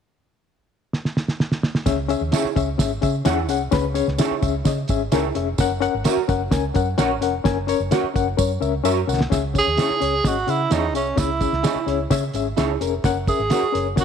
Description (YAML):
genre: uptempo 1960s-style soul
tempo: 129 BPM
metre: 4/4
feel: straight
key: C# dorian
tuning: A4 = 441 Hz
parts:
  - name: cloth-damped thuddy drum kit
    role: drums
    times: 0.9-14.0 s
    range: hi-hat, kick drum, snare drum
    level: -22 LUFS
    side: right 2 dB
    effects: none
  - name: bright reed electric piano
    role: accompaniment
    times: 1.9-14.0 s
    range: C#3 to G#5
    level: -23 LUFS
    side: left 11 dB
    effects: fast tremolo
  - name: vintage muted fingered electric bass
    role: bass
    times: 1.9-14.0 s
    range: E#1 to C#3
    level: -26 LUFS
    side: right 2 dB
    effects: none
  - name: tambourine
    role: percussion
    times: 1.9-14.0 s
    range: none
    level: -36 LUFS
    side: right 15 dB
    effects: none
  - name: electric guitar through a small old amp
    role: stabs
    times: 2.3-13.7 s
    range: E4 to C#5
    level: -26 LUFS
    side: right 13 dB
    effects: ensemble chorus
  - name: breathy tenor saxophone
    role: melody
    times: 9.6-14.0 s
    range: C#4 to G#4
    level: -22 LUFS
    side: right 4 dB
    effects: none
room: light reverb, small room ambience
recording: 1960s-style stereo with parts hard left and right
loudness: -19 LUFS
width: side -7 dB against mid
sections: 0.0-1.9 A section; 1.9-9.3 B section; 9.3-14.0 C section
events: drum fill 0.9-1.9, 8.4-9.3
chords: 0.0 N.C.; 1.9 C#m; 5.6 F#; 9.3 C#m